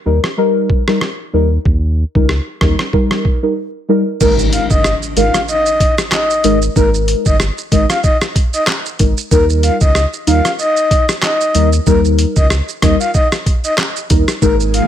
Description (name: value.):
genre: dancehall.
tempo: 94 BPM.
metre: 4/4.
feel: swing 56% on 16ths.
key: unclear.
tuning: A4 = 441 Hz.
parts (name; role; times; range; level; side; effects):
deep mellow chord stab; accompaniment; 0.1-14.9 s; G3 to Bb4; -16 LUFS; left 2 dB; chorus, sidechain pumping.
sub bass with octave; bass; 0.1-14.8 s; G1 to Eb2; -15 LUFS; equal; none.
lo-fi sampler-style drum kit; drums; 0.2-14.9 s; crash cymbal, handclaps, hi-hat, kick drum, rim click, shaker; -15 LUFS; equal; none.
breathy flute-like synth lead; melody; 4.2-14.9 s; Bb4 to F5; -16 LUFS; left 1 dB; chorus, digital delay.
impact; sound effects; 4.2-6.8 s; none; -24 LUFS; equal; none.
ethereal airy pad; sustained chords; 14.6-14.9 s; Eb3 to Ab4; -20 LUFS; right 1 dB; ensemble chorus, built-in reverb, sidechain pumping.
room: little or no reverb.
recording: none.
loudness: -11 LUFS.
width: side -10 dB against mid.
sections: 0.0-4.2 A section; 4.2-14.9 B section.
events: break 3.6-4.2; impact 4.2-6.8.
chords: 0.0 Eb; 4.2 Absus2; 9.3 Eb.